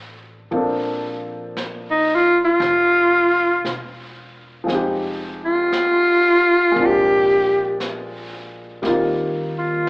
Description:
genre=jazz ballad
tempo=58 BPM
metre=4/4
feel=swing 68% on 8ths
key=Bb major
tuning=A4 = 440 Hz
part: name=warm baby grand piano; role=accompaniment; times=0.0-9.9 s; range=F3 to A4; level=-23 LUFS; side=equal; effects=none
part: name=upright bass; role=bass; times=0.0-9.9 s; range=E1 to Eb2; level=-36 LUFS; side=equal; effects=none
part: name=jazz brush drum kit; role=drums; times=0.5-9.9 s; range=brushed snare drum, hi-hat, snare drum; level=-33 LUFS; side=equal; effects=slapback echo
part: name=breathy alto saxophone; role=melody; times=1.9-9.9 s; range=Eb4 to G4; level=-14 LUFS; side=equal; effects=slapback echo
room=studio ambience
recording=live gig heard through the venue's PA, club reverb, AM radio sound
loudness=-16 LUFS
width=side -25 dB against mid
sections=0.5-9.9 A section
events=alto saxophone solo 0.5-9.9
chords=0.0 Bbmaj9 (rootless); 0.5 Bbmaj9; 4.7 Fm9; 6.8 Bb9; 8.8 Eb6

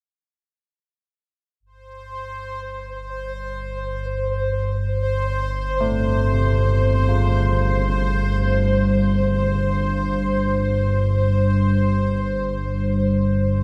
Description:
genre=dark ambient drone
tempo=free time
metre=none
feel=none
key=unclear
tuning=A4 = 440 Hz
part: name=analog drone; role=drone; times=3.3-13.6 s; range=G1 to G2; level=-22 LUFS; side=equal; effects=chorus
part: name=bubbling stepped-filter texture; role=texture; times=1.9-13.6 s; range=C5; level=-27 LUFS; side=equal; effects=chorus, built-in reverb
part: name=carillon bells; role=arpeggios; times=5.8-12.8 s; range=C3 to F4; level=-32 LUFS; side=equal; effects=tape echo
room=moderate huge ambient reverb, RT60 7.6 s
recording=none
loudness=-21 LUFS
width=mono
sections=1.6-13.6 A section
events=fade-out on church bells 1.6-13.6; filter sweep on synth drone 1.6-13.6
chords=1.6 Gsus2

